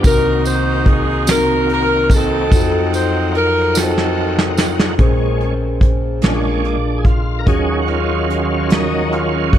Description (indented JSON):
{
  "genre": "slow gospel",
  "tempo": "48 BPM (dotted quarters)",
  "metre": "6/8",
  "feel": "straight",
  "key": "Bb minor",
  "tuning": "A4 = 440 Hz",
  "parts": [
    { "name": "mellow tine electric piano", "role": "accompaniment", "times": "0.0-9.6 s", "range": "Bb1 to C5", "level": "-18 LUFS", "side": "left 2 dB", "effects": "wide subtle chorus" },
    { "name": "bright tonewheel organ", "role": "sustained chords", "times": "0.0-9.6 s", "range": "Bb2 to Gb5", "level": "-22 LUFS", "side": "right 3 dB", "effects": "slow rotary speaker, overdrive, chorus vibrato" },
    { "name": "soft brush drum kit", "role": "drums", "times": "0.0-9.6 s", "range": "hi-hat, kick drum, snare drum", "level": "-15 LUFS", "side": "equal", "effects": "none" },
    { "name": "tambourine", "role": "percussion", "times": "0.0-5.0 s", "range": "none", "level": "-26 LUFS", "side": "right 6 dB", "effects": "none" },
    { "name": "warm saxophone section", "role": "melody", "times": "0.1-5.0 s", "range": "C4 to C5", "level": "-18 LUFS", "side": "equal", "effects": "tape echo" },
    { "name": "mellow French horn section", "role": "sustained chords", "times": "5.0-9.6 s", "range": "D3 to F5", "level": "-31 LUFS", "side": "right 1 dB", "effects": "none" }
  ],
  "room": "light reverb, small room ambience",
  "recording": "none",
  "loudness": "-13 LUFS",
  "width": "side -10 dB against mid",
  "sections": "0.0-5.0 A section; 5.0-9.6 B section",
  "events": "drum fill 3.8-5.0; tonewheel organ solo 5.0-9.6",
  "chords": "0.0 Cm7b5; 2.5 F7b9; 5.0 Bbm9; 6.2 Bb7; 7.5 Ebm11"
}